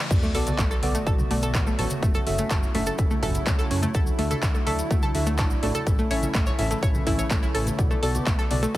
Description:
progressive house; 125 BPM; 4/4; straight; B minor; A4 = 440 Hz
riser and sub drop; sound effects; 0.0-2.0 s; -33 LUFS; equal
evolving wavetable pad; sustained chords; 0.1-8.8 s; C#3 to F#4; -34 LUFS; equal; chorus, built-in reverb, sidechain pumping
deep mellow chord stab; stabs; 0.1-8.8 s; B3 to E5; -30 LUFS; right 1 dB; chorus, sidechain pumping, tape echo
dark detuned saw bass; bass; 0.1-8.8 s; F#1 to F#2; -29 LUFS; equal; sidechain pumping
deep house drum kit; drums; 0.1-8.8 s; crash cymbal, handclaps, hi-hat; -32 LUFS; equal; overdrive
electronic kick drum; drums; 0.1-8.8 s; -24 LUFS; equal
cabasa; percussion; 0.1-8.8 s; -40 LUFS; left 1 dB
analog pluck; arpeggios; 0.2-8.8 s; A3 to C#6; -30 LUFS; left 1 dB; chorus, sidechain pumping, tape echo
congas; percussion; 0.5-8.6 s; -34 LUFS; right 1 dB
light reverb; heavily compressed radio sound; -21 LUFS; side -16 dB against mid
0.1-8.8 A section
drop 0.1-8.8; impact 0.1-2.0
0.1 Bm7; 2.0 F#m7; 3.9 Dadd9; 5.9 A; 7.8 Bm7

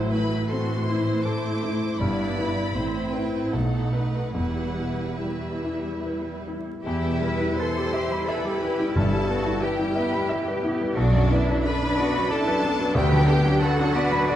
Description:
classical, romantic movement for piano and orchestra; 70-93 BPM; 3/4; rubato; E minor; A4 = 437 Hz
warm baby grand piano; melody; 0.0-14.4 s; B1 to B5; -25 LUFS; left 1 dB
clear chamber violin section; second line; 0.0-14.4 s; D4 to D5; -32 LUFS; left 2 dB
rich studio viola section; accompaniment; 0.0-14.4 s; D3 to F#4; -31 LUFS; right 2 dB
dark French horn section; sustained chords; 0.0-6.5 s; G3 to E4; -35 LUFS; left 1 dB
rich studio double bass section; bass; 0.0-13.5 s; E1 to E2; -30 LUFS; right 2 dB
warm studio cello section; bass; 0.0-14.4 s; E2 to B4; -30 LUFS; right 3 dB
rich studio violin section; melody; 0.1-14.4 s; D5 to D6; -34 LUFS; left 2 dB
timpani; percussion; 9.0-9.9 s; G2; -30 LUFS; equal
moderate scoring stage reverb, RT60 1.7 s; dark, warm production, vinyl crackle; -22 LUFS; side -11 dB against mid
0.0-6.9 A section; 6.9-14.4 B section
0.0 Am; 2.0 Em/G; 2.8 Am; 3.5 B7; 4.3 Em; 9.0 Em/G; 11.0 Bm; 13.0 Bm/D

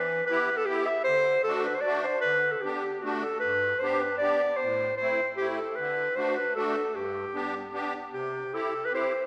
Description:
alpine folk, alpine dance band; 153 BPM; 3/4; swing 55% on 8ths; G major; A4 = 440 Hz
mellow clarinet; melody; 0.0-9.2 s; F#4 to E5; -29 LUFS; equal
musette accordion; accompaniment; 0.0-9.1 s; G2 to G4; -35 LUFS; equal
wet concert hall reverb, RT60 1.9 s; recorded in a church or concert hall, faint mains hum; -28 LUFS; mono
0.0-8.1 A section; 8.1-9.3 B section
0.0 Em; 1.1 D7; 2.3 G/D; 3.0 D; 3.4 G; 4.6 Am; 5.8 D; 7.0 G; 8.1 C

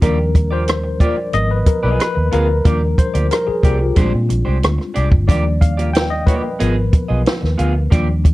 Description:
lush 1970s-style soul; 91 BPM; 4/4; straight; Eb major; A4 = 440 Hz
tine electric piano; accompaniment; 0.0-8.3 s; F3 to G5; -20 LUFS; left 2 dB; overdrive, fast stereo tremolo
clean electric guitar; riff; 0.0-8.3 s; Ab3 to F5; -24 LUFS; right 2 dB; wide subtle chorus
vintage muted fingered electric bass; bass; 0.0-8.3 s; G1 to Bb2; -18 LUFS; equal
compact cocktail drum kit; drums; 0.0-8.3 s; hi-hat, kick drum, rim click, snare drum; -14 LUFS; equal
light reverb; cassette tape; -14 LUFS; side -18 dB against mid
0.0-8.3 A section
tine electric piano solo 0.0-8.3
0.0 Ebmaj9; 1.3 Abm6; 2.7 Ebmaj9; 4.0 Bb13; 5.3 Ebmaj9; 6.6 Abm6

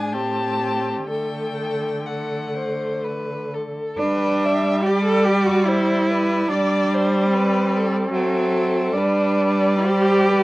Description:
classical, slow romantic movement for string quartet; 60-77 BPM; 3/4; rubato; G major; A4 = 443 Hz
warm violin; melody; 0.0-10.4 s; D5 to A5; -31 LUFS; left 4 dB
rich violin; second line; 0.0-10.4 s; G4 to E5; -26 LUFS; left 2 dB
warm viola; accompaniment; 0.0-10.4 s; F#3 to D4; -22 LUFS; equal
warm cello; bass; 0.0-10.4 s; G#2 to A4; -22 LUFS; right 1 dB
light reverb; worn, warbling old tape, cassette tape, warbly pitch drift; -18 LUFS; side -19 dB against mid
0.0-4.0 A section; 4.0-10.4 B section
0.1 Am7; 1.1 D; 4.0 G; 6.5 D7/G; 8.9 G

